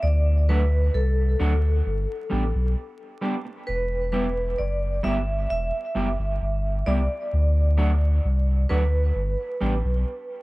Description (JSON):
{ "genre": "roots reggae", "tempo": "66 BPM", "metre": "4/4", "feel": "straight", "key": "E minor", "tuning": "A4 = 442 Hz", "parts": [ { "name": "vibraphone with medium hard mallets", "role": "melody", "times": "0.0-10.4 s", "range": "A4 to E5", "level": "-29 LUFS", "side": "right 1 dB", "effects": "dub echo" }, { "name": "warm sub bass", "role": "bass", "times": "0.0-10.0 s", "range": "E1 to D2", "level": "-21 LUFS", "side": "equal", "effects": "none" }, { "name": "electric guitar at the edge of break-up", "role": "accompaniment", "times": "0.5-9.7 s", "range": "F#3 to G4", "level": "-31 LUFS", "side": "right 1 dB", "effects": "spring reverb, dub echo" } ], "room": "little or no reverb", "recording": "dry, close 1970s-style studio recording, vinyl crackle", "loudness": "-21 LUFS", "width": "side -20 dB against mid", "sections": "0.0-10.4 A section", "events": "none", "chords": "0.0 D; 1.8 G; 3.7 Em; 7.3 D; 9.1 G" }